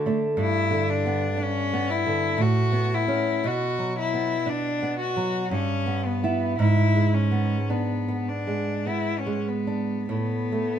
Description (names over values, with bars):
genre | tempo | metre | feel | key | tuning
romantic duo for cello and classical guitar | 47-60 BPM | 3/4 | rubato | unclear | A4 = 441 Hz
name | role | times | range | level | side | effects
nylon-string guitar | accompaniment | 0.0-10.8 s | G2 to E4 | -24 LUFS | right 2 dB | none
rich cello | melody | 0.4-10.8 s | B3 to F#4 | -26 LUFS | left 5 dB | none
room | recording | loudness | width
moderate stone room reverb, RT60 1.1 s | band playing live in one room | -22 LUFS | side -9 dB against mid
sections
0.0-10.8 A section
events
none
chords
0.4 G6; 2.4 Aadd9; 3.5 Bm; 5.5 Em/G; 6.6 G#dim; 10.1 N.C.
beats
| 0.39 1.40 2.41 | 3.47 4.50 5.54 | 6.61 7.71 8.88 | 10.11